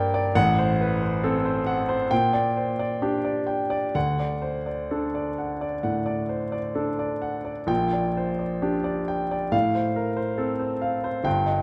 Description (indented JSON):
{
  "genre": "classical, romantic character piece for solo piano",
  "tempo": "66 BPM",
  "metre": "4/4",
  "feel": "uneven beats, rubato",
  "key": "G minor",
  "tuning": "A4 = 439 Hz",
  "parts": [
    { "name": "clear grand piano", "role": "solo", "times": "0.0-11.6 s", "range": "G1 to G5", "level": "-25 LUFS", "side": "equal", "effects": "none" }
  ],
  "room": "moderate concert hall reverb, RT60 1.8 s",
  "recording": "none",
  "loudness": "-25 LUFS",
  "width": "mono",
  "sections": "0.0-11.6 A section",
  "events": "none",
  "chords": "0.4 F#dim/A; 2.1 Gm/Bb; 3.9 D; 7.7 Gm/Bb; 9.5 F/A",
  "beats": "| 0.36 1.23 2.11 3.02 | 3.95 4.91 5.84 6.76 | 7.69 8.63 9.53 10.40 | 11.26"
}